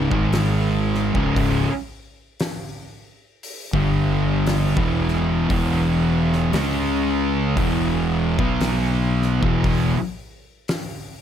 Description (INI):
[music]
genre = stoner and doom metal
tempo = 58 BPM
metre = 4/4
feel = swing 58% on 8ths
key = C# minor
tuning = A4 = 440 Hz
[part]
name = sludgy distorted guitar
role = riff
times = 0.0-9.9 s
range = C#2 to C#4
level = -26 LUFS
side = equal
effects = overdrive
[part]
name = thick fuzz guitar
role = riff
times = 0.0-9.9 s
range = C#2 to C#4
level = -24 LUFS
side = left 8 dB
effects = distortion
[part]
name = thick fuzz guitar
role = riff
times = 0.0-9.9 s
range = C#2 to C#4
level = -23 LUFS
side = right 7 dB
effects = distortion
[part]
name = fuzz fingered electric bass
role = bass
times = 0.0-9.9 s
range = C#1 to C#2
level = -26 LUFS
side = equal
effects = overdrive
[part]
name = oversized low-tuned drum kit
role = drums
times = 0.1-11.0 s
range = hi-hat, kick drum, snare drum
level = -27 LUFS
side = left 1 dB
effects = none
[sound]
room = little or no reverb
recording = none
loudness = -18 LUFS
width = side -9 dB against mid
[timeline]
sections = 0.0-11.2 A section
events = none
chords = 0.1 G#5; 1.1 C#5; 3.7 G5; 4.7 E5; 6.5 C#5; 7.6 E5; 8.4 B5; 9.4 E5